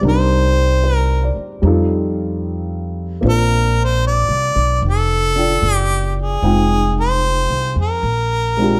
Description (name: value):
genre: jazz ballad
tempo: 75 BPM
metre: 4/4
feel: swing 68% on 8ths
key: Bb major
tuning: A4 = 437 Hz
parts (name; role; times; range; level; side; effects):
- warm baby grand piano; accompaniment; 0.0-8.8 s; G3 to G5; -23 LUFS; equal; none
- upright bass; bass; 0.0-8.8 s; F1 to F2; -20 LUFS; equal; none
- bright harmonica; melody; 0.1-8.8 s; Ab4 to D5; -20 LUFS; equal; none
room: light reverb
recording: dark, warm production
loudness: -17 LUFS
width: mono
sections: 0.0-8.8 A section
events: none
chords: 0.0 Cm7; 1.6 F9; 3.2 Bbmaj9; 6.4 Fm7; 8.0 Bb13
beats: | 0.03 0.83 1.63 2.42 | 3.22 4.02 4.82 5.62 | 6.42 7.22 8.03